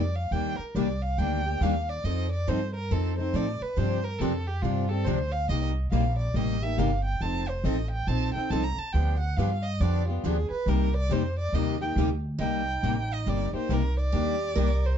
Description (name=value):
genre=acoustic string swing (jazz manouche)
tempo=139 BPM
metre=4/4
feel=swing 62% on 8ths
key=C dorian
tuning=A4 = 441 Hz
part: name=warm violin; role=melody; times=0.0-15.0 s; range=F4 to Bb5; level=-33 LUFS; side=right 2 dB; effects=none
part: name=upright bass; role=bass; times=0.0-15.0 s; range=F1 to A2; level=-27 LUFS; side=equal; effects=none
part: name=picked plugged-in steel-string acoustic guitar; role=accompaniment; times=0.3-14.7 s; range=C3 to A4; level=-30 LUFS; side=left 5 dB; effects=none
part: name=picked steel-string acoustic guitar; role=accompaniment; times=0.3-14.7 s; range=C3 to A4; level=-36 LUFS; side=right 8 dB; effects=none
part: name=picked steel-string acoustic guitar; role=second line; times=12.4-15.0 s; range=Eb4 to Bb4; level=-36 LUFS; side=right 7 dB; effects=none
room=light reverb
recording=dark, warm production, nothing above 7.9 kHz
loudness=-25 LUFS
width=side -8 dB against mid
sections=0.0-12.4 A section; 12.4-15.0 B section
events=violin solo 0.0-12.4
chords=0.3 Ebmaj7; 2.0 F7; 3.8 G7sus4; 5.5 Cm7; 7.2 F7; 8.9 G7b13; 10.7 Cm9; 12.4 Cm7; 14.1 Ebmaj7